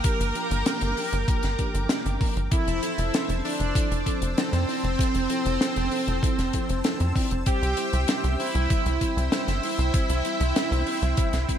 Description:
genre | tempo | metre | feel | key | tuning
synthwave | 97 BPM | 4/4 | straight | unclear | A4 = 440 Hz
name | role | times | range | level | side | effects
soft supersaw | melody | 0.0-11.6 s | C4 to Bb4 | -29 LUFS | right 2 dB | digital delay
string machine, violins | second line | 0.0-11.6 s | C4 to Bb4 | -34 LUFS | right 1 dB | ensemble chorus, digital delay
warm analog pad | sustained chords | 0.0-11.6 s | Bb3 to E6 | -34 LUFS | equal | chorus, sidechain pumping
FM electric piano with soft pad layer | stabs | 0.0-11.6 s | F3 to E5 | -34 LUFS | left 1 dB | chorus, digital delay
compact cocktail drum kit | drums | 0.0-11.6 s | hi-hat, snare drum | -29 LUFS | left 1 dB | gated reverb
electronic kick drum | drums | 0.0-11.6 s | none | -25 LUFS | equal | overdrive
tight sequencer bass | bass | 0.2-11.5 s | F1 to F2 | -26 LUFS | equal | none
room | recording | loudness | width
light reverb, studio reverb | bright 1980s-style digital production | -22 LUFS | side -9 dB against mid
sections
0.0-11.6 A section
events
none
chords
0.0 Gm7; 2.5 Fmaj7; 7.5 C

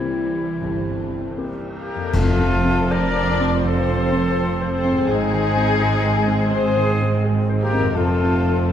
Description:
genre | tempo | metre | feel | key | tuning
cinematic, emotional film score for orchestra | 76-84 BPM | 4/4 | rubato | unclear | A4 = 443 Hz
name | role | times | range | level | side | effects
muted studio violin section | melody | 0.0-8.7 s | Ab3 to D4 | -30 LUFS | left 2 dB | none
muted studio violin section | second line | 0.0-8.7 s | G3 to D5 | -25 LUFS | left 4 dB | none
warm clarinet | second line | 0.0-1.8 s | E4 | -34 LUFS | left 2 dB | none
muted studio viola section | accompaniment | 0.0-8.7 s | F3 to C4 | -29 LUFS | right 2 dB | none
warm grand piano | accompaniment | 0.0-8.7 s | C2 to E5 | -27 LUFS | equal | none
mellow French horn section | sustained chords | 0.0-8.7 s | F3 to E4 | -29 LUFS | left 2 dB | none
concert harp | arpeggios | 0.0-8.7 s | F2 to A5 | -31 LUFS | left 8 dB | none
muted studio cello section | bass | 0.0-8.7 s | F2 to E3 | -24 LUFS | right 3 dB | none
timpani | percussion | 0.0-3.2 s | F2 to C3 | -27 LUFS | left 2 dB | none
muted studio double bass section | bass | 0.6-8.7 s | F1 to Ab1 | -26 LUFS | right 3 dB | none
bright concert flute | second line | 1.8-8.7 s | Eb4 to Bb4 | -26 LUFS | left 1 dB | none
clash cymbals and concert bass drum | percussion | 2.1-3.6 s | none | -30 LUFS | equal | none
room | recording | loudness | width
moderate concert hall reverb, RT60 2.5 s | none | -17 LUFS | side -9 dB against mid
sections
0.0-2.1 A section; 2.1-8.7 B section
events
band accent 2.1-2.9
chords
0.0 C7; 2.1 F; 5.1 Ab; 8.0 F

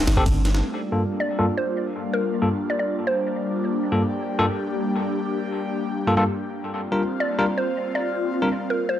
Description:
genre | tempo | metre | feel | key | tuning
drum and bass, jungle | 160 BPM | 4/4 | straight | G minor | A4 = 440 Hz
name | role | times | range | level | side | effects
airy breathy pad | sustained chords | 0.0-9.0 s | G3 to G4 | -26 LUFS | left 1 dB | chorus, phaser
long sustained 808-style bass | bass | 0.0-0.6 s | G1 | -21 LUFS | equal | none
jungle sampler-style drum kit | drums | 0.1-0.6 s | kick drum, ride cymbal, snare drum | -23 LUFS | equal | none
bell-like tine electric piano | stabs | 0.2-8.5 s | G2 to Bb4 | -24 LUFS | left 1 dB | low-pass filter, dub echo
mallet-like synth pluck | melody | 1.2-3.6, 7.2-9.0 s | Bb4 to D5 | -27 LUFS | right 1 dB | chorus, dub echo
room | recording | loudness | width
light reverb | dry, gritty hardware recording, transformer saturation | -21 LUFS | side -11 dB against mid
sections
0.6-9.0 A section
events
filter sweep on tine electric piano 0.6-9.0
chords
0.0 D7sus4; 0.6 Gm7; 6.6 C7sus4/G

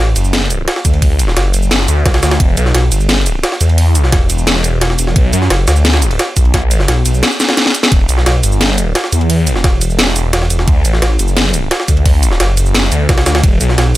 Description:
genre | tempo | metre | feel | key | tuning
dark technical drum and bass | 174 BPM | 4/4 | straight | E minor | A4 = 440 Hz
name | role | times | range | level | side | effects
phased detuned saw bass | bass | 0.0-14.0 s | E1 to F#2 | -12 LUFS | equal | phaser, sidechain pumping
drum and bass drum kit | drums | 0.2-14.0 s | cabasa, hi-hat, rim click, snare drum | -15 LUFS | equal | overdrive
jungle sampler-style drum kit | drums | 0.2-14.0 s | hi-hat, ride cymbal, snare drum | -18 LUFS | right 1 dB | overdrive, high-pass filter on cymbals, high-pass filter on snare, high-pass filter on hats
electronic kick drum | drums | 0.8-13.5 s | none | -12 LUFS | equal | none
room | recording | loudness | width
little or no reverb | none | -10 LUFS | side -16 dB against mid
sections
0.0-14.0 A section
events
drum fill 7.4-7.9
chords
none

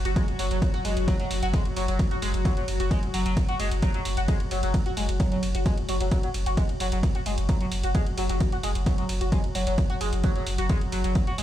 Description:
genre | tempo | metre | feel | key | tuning
driving peak-time techno | 131 BPM | 4/4 | straight | unclear | A4 = 441 Hz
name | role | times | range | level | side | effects
warm sub bass | bass | 0.0-11.4 s | F#1 | -28 LUFS | equal | sidechain pumping, low-pass filter
deep dark ambient pad | drone | 0.0-11.4 s | F#3 to F#4 | -34 LUFS | left 2 dB | chorus, built-in reverb, sidechain pumping
overdriven synth lead | riff | 0.1-11.4 s | F#3 to F#4 | -30 LUFS | equal | distortion, phaser, tube saturation, analog chorus, sidechain pumping, digital delay
punchy analog drum machine | drums | 0.1-11.4 s | hi-hat, ride cymbal | -36 LUFS | right 2 dB | sidechain pumping on hats, sidechain pumping on cymbals
electronic kick drum | drums | 0.2-11.2 s | none | -24 LUFS | equal | none
room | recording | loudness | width
little or no reverb | played on a big sound system in a bare room, large studio reverb | -23 LUFS | side -12 dB against mid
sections
0.0-11.4 A section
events
none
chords
none

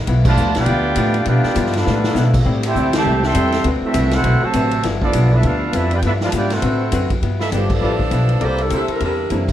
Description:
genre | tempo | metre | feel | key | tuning
jazz, big band swing | 202 BPM | 4/4 | swing 60% on 8ths | G major | A4 = 439 Hz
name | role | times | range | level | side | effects
upright bass | bass | 0.0-9.5 s | G1 to B2 | -18 LUFS | equal | none
archtop guitar, miked and amplified | accompaniment | 0.1-9.5 s | G2 to B4 | -24 LUFS | left 6 dB | none
clear saxophone section | sustained chords | 0.1-7.2 s | D3 to G4 | -28 LUFS | left 2 dB | none
swinging big-band drum kit | drums | 0.1-9.5 s | crash cymbal, hi-hat, kick drum, ride cymbal, snare drum | -24 LUFS | equal | none
brilliant trombone section | second line | 0.2-7.1 s | C3 to G4 | -23 LUFS | right 3 dB | none
mellow trumpet section | melody | 0.3-7.1 s | B3 to C6 | -21 LUFS | right 1 dB | none
mellow trumpet section | stabs | 7.4-9.1 s | E4 to E5 | -26 LUFS | right 3 dB | none
warm saxophone section | melody | 7.5-9.5 s | F3 to C5 | -21 LUFS | left 1 dB | none
warm upright piano | accompaniment | 7.5-9.5 s | E3 to A4 | -25 LUFS | right 1 dB | none
room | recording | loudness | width
light reverb | none | -15 LUFS | side -12 dB against mid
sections
0.0-7.2 A section; 7.2-9.5 B section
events
band accent 0.2, 2.9, 7.7; drum fill 1.9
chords
0.1 G13; 2.5 Am7; 3.6 D13; 4.8 G13; 6.6 D13; 7.2 G13; 8.4 C13

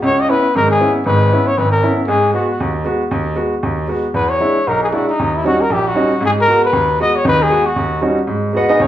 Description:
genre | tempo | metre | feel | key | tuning
jazz | 233 BPM | 4/4 | swing 58% on 8ths | G# minor | A4 = 437 Hz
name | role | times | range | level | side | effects
breathy trumpet | melody | 0.0-8.0 s | D#4 to D#5 | -15 LUFS | left 2 dB | none
clear baby grand piano | accompaniment | 0.0-8.9 s | G#1 to F#5 | -15 LUFS | right 1 dB | none
room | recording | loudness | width
wet large studio reverb, RT60 0.9 s | band playing live in one room, nothing above 10.4 kHz | -13 LUFS | side -12 dB against mid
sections
0.0-8.3 A section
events
none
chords
0.0 C#m7; 2.1 G#m7; 4.1 E7; 5.2 D#7#9; 6.2 G#m7; 7.8 D#7#9; 8.3 G#m7

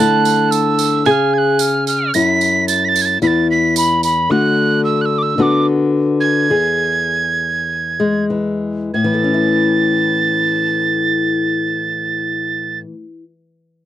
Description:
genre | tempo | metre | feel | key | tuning
acoustic folk duo or small band | 92-111 BPM | 4/4 | straight | A major | A4 = 440 Hz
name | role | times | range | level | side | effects
breathy mellow tin whistle | melody | 0.0-12.8 s | B5 to B6 | -17 LUFS | right 4 dB | none
pedal steel guitar | second line | 0.0-2.1 s | G#5 to A5 | -18 LUFS | right 10 dB | none
nylon-string guitar | accompaniment | 0.0-13.2 s | E2 to G#4 | -16 LUFS | left 3 dB | none
tambourine | percussion | 0.3-4.2 s | none | -24 LUFS | right 11 dB | none
room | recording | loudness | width
light reverb | dry, close 1970s-style studio recording | -13 LUFS | side -12 dB against mid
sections
0.0-8.9 A section; 8.9-13.9 B section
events
slowing down 4.3-8.9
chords
0.0 Dsus2; 1.1 C#5; 2.1 F#m7; 3.2 N.C.; 4.3 D; 5.4 Bm/D; 6.5 E; 8.9 A

